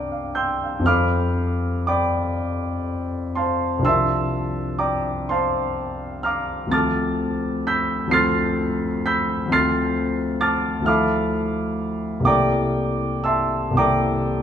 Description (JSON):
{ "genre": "classical, impressionist solo piano", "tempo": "38-44 BPM (dotted quarters)", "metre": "6/8", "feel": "rubato", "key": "F major", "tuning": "A4 = 440 Hz", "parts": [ { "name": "warm concert grand piano", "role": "solo", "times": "0.0-14.4 s", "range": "C2 to C7", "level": "-19 LUFS", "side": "equal", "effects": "none" } ], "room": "moderate concert hall reverb, RT60 2.1 s", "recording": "small room ambience", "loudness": "-19 LUFS", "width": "side -9 dB against mid", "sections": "0.9-14.4 A section", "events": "none", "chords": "0.0 C9sus4; 0.9 F6; 3.8 C11; 6.7 Dm7; 9.5 F6/D; 10.9 Dmadd9; 12.3 C13" }